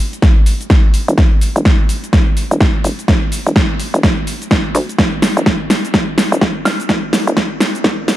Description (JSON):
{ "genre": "bass house", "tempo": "126 BPM", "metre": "4/4", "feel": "swing 61% on 16ths", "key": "E minor", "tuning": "A4 = 441 Hz", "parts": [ { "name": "hollow knocking FM bass", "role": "bass", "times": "0.0-7.7 s", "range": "E1 to D2", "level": "-16 LUFS", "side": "equal", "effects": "tube saturation, sidechain pumping, high-pass filter" }, { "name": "big-room dance drum kit", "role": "drums", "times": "0.1-8.2 s", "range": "hi-hat, shaker, snare drum, woodblock", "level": "-15 LUFS", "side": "equal", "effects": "none" }, { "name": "electronic kick drum", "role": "drums", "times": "0.2-8.0 s", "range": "none", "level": "-13 LUFS", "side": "equal", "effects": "none" } ], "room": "light reverb", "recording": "dark, warm production, high-pass filter", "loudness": "-11 LUFS", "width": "side -14 dB against mid", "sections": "0.0-8.2 A section", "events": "build-up 0.0-8.2; drum fill 0.0-8.2; filter sweep 0.0-8.2", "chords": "none" }